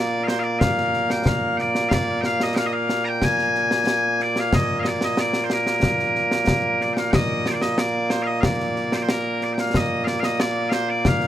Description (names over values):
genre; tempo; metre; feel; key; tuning
scottish traditional, Scottish pipe music; 92 BPM; 2/4; straight; Bb mixolydian; A4 = 440 Hz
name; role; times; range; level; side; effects
loud bright bagpipes; melody; 0.0-11.3 s; Bb2 to Bb5; -21 LUFS; equal; none
concert snare drum and concert bass drum; drums; 0.3-11.3 s; none; -24 LUFS; left 1 dB; none
room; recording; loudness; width
light reverb; none; -19 LUFS; side -11 dB against mid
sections
0.0-7.1 A section; 7.1-11.3 A section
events
none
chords
none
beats
| 0.61 1.26 | 1.91 2.56 | 3.22 3.87 | 4.52 5.17 | 5.83 6.48 | 7.13 7.78 | 8.43 9.09 | 9.74 10.39 | 11.04